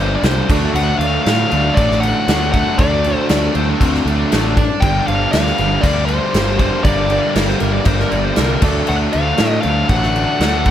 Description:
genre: classic rock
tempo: 118 BPM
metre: 4/4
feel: straight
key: unclear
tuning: A4 = 440 Hz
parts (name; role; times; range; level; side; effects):
- dark smooth lead guitar; second line; 0.0-8.9 s; C4 to D5; -24 LUFS; left 2 dB; overdrive
- raw garage guitar; riff; 0.0-10.7 s; G2 to D4; -22 LUFS; left 1 dB; overdrive
- tight distorted guitar; riff; 0.0-10.7 s; G2 to D4; -22 LUFS; right 1 dB; distortion
- fuzz picked electric bass; bass; 0.0-10.7 s; G1 to A2; -19 LUFS; equal; overdrive
- big rock drum kit; drums; 0.2-10.7 s; crash cymbal, kick drum, snare drum; -18 LUFS; equal; none
- reed electric piano; accompaniment; 0.5-10.0 s; D4 to D5; -27 LUFS; right 8 dB; fast tremolo
- bluesy overdriven lead guitar; melody; 0.8-10.7 s; C5 to G5; -20 LUFS; left 2 dB; distortion
- tonewheel organ; sustained chords; 4.8-10.7 s; D4 to D5; -30 LUFS; equal; none
room: small room reverb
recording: none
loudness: -13 LUFS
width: side -10 dB against mid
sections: 0.0-10.7 A section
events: none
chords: 0.5 D; 4.8 Gm; 8.6 D

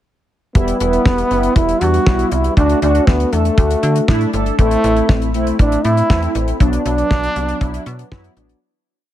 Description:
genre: synth-pop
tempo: 119 BPM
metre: 4/4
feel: straight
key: E minor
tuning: A4 = 439 Hz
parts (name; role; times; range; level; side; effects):
- breathy trombone; melody; 0.6-8.1 s; A3 to F#4; -18 LUFS; equal; ping-pong delay
- mellow synth brass; accompaniment; 0.6-8.6 s; F#3 to A4; -20 LUFS; equal; chorus
- slap-like FM bass; bass; 0.6-8.5 s; E1 to D3; -19 LUFS; equal; none
- damped 70s drum kit; drums; 0.6-8.6 s; hi-hat, kick drum, snare drum; -16 LUFS; equal; none
room: light reverb, studio ambience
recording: none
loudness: -13 LUFS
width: side -12 dB against mid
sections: 0.6-8.6 verse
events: fade-out 6.6-8.6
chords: 0.6 Em; 2.6 D; 4.6 Am; 6.6 Bm

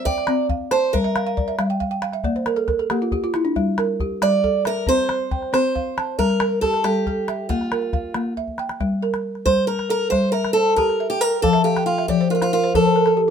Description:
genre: west african traditional, West African string and xylophone music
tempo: 91 BPM (dotted quarters)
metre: 12/8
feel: straight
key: G dorian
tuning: A4 = 440 Hz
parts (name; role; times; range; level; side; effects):
- picked old ladder-braced acoustic guitar; melody; 0.0-13.2 s; F4 to D5; -20 LUFS; right 1 dB; none
- balafon; arpeggios; 0.0-13.3 s; F3 to A5; -21 LUFS; equal; none
- calabash; percussion; 0.1-13.2 s; none; -26 LUFS; left 2 dB; none
room: light reverb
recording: minimal, uncompressed stereo recording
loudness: -18 LUFS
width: side -7 dB against mid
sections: 0.0-8.8 A section; 8.8-13.3 B section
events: balafon fill 1.0-3.6, 11.4-13.3; drum fill 8.4-8.8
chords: 0.0 C5; 0.9 Gm; 2.2 N.C.; 3.6 Gm; 4.9 C; 6.2 Gm; 7.5 Bb5; 8.8 Gm; 11.4 F

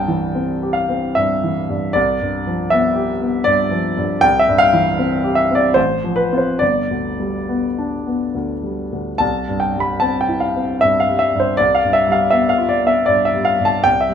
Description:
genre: classical, romantic nocturne for solo piano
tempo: 68-82 BPM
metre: 3/4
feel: rubato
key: C major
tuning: A4 = 439 Hz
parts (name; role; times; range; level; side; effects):
- warm baby grand piano; solo; 0.0-14.1 s; G1 to B5; -15 LUFS; equal; none
room: light reverb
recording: minimal, uncompressed stereo recording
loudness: -15 LUFS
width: side -8 dB against mid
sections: 0.0-14.1 A section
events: none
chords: 0.0 C; 1.9 G7/C; 4.2 C; 5.8 F/A; 6.6 G; 9.2 C; 11.6 G7/C

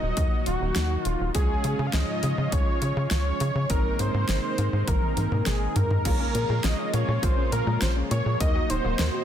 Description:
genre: synthwave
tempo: 102 BPM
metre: 4/4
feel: straight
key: Bb minor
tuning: A4 = 442 Hz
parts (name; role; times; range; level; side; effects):
- wide unison lead; melody; 0.0-9.2 s; Gb4 to F5; -29 LUFS; equal; ping-pong delay
- lush unison pad; sustained chords; 0.0-9.2 s; Ab2 to Gb4; -33 LUFS; equal; chorus
- tight sequencer bass; bass; 0.0-9.1 s; Eb1 to Db3; -26 LUFS; equal; sidechain pumping
- electronic kick drum; drums; 0.2-8.5 s; none; -26 LUFS; equal; overdrive, small room ambience
- pop drum kit; drums; 0.2-9.1 s; crash cymbal, hi-hat, snare drum, toms; -30 LUFS; equal; small room ambience
- analog synth brass; stabs; 0.8-9.2 s; Ab3 to Gb5; -35 LUFS; right 3 dB; chorus
- warbly dusty pluck; arpeggios; 6.1-9.2 s; Ab3 to Bb4; -34 LUFS; left 4 dB; chorus, tape echo
room: little or no reverb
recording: dense, heavily limited modern master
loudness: -22 LUFS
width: side -10 dB against mid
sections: 0.0-6.1 A section; 6.1-9.2 B section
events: drum fill 4.9-6.1; kick drops out 5.5-6.1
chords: 0.0 Ebm; 1.3 Db; 3.7 Abadd9; 6.1 Bbm7; 8.4 Ebm

